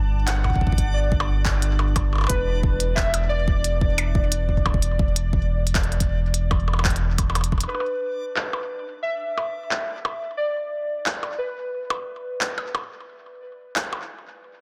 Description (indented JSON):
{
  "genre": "IDM",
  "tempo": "89 BPM",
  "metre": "4/4",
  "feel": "straight",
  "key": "unclear",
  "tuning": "A4 = 445 Hz",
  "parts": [
    { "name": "warbly lo-fi synth keys", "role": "melody", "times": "0.0-12.7 s", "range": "B4 to A5", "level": "-31 LUFS", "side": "equal", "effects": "chorus, digital delay" },
    { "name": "rubbery square bass", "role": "bass", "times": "0.0-7.7 s", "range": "E1 to G1", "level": "-25 LUFS", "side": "equal", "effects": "none" },
    { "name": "backwards swelling texture", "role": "texture", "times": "0.0-7.7 s", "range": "D4 to D5", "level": "-40 LUFS", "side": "equal", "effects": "built-in reverb" },
    { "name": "glitchy drum kit", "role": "drums", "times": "0.3-14.1 s", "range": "handclaps, hi-hat, percussion blips", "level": "-29 LUFS", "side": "equal", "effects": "overdrive, low-pass filter on perc, low-pass filter on snare, low-pass filter on hats, low-pass filter on room, delay" },
    { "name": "electronic kick drum", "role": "drums", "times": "0.4-7.7 s", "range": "none", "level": "-26 LUFS", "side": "equal", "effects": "none" }
  ],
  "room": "little or no reverb",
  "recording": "dense, heavily limited modern master",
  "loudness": "-23 LUFS",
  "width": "mono",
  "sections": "0.0-7.7 A section; 7.7-14.6 B section",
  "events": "drum fill 7.4-7.7",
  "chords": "0.0 G5; 2.3 E5; 7.7 N.C."
}